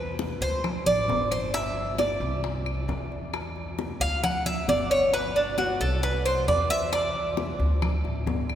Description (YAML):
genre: latin, Cuban son and guajira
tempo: 134 BPM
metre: 4/4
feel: straight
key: unclear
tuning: A4 = 440 Hz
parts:
  - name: Cuban tres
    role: arpeggios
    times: 0.0-7.8 s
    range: D4 to F#5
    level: -26 LUFS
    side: right 1 dB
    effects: none
  - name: upright bass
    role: bass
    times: 0.0-8.6 s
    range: G1 to E2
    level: -30 LUFS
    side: equal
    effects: none
  - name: bongos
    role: percussion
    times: 0.2-8.6 s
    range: none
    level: -36 LUFS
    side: left 4 dB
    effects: none
  - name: congas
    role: percussion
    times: 0.2-8.6 s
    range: none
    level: -35 LUFS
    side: left 2 dB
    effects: none
  - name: claves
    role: percussion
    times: 0.6-8.6 s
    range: none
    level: -42 LUFS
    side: left 2 dB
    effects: none
room: wet cathedral reverb, RT60 5.6 s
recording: recorded in a church or concert hall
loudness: -24 LUFS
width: side -10 dB against mid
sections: 0.0-8.6 A section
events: Cuban tres solo 0.0-8.6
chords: 0.0 E5; 0.6 D5; 1.5 G5; 2.4 C; 3.3 Dmadd9; 4.2 Em13; 5.1 Gmaj9; 6.0 C; 6.9 Dsus2; 7.8 D5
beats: 0.19 0.64 1.09 | 1.54 1.99 2.44 2.89 | 3.34 3.79 4.23 4.68 | 5.13 5.58 6.03 6.48 | 6.93 7.38 7.82 8.27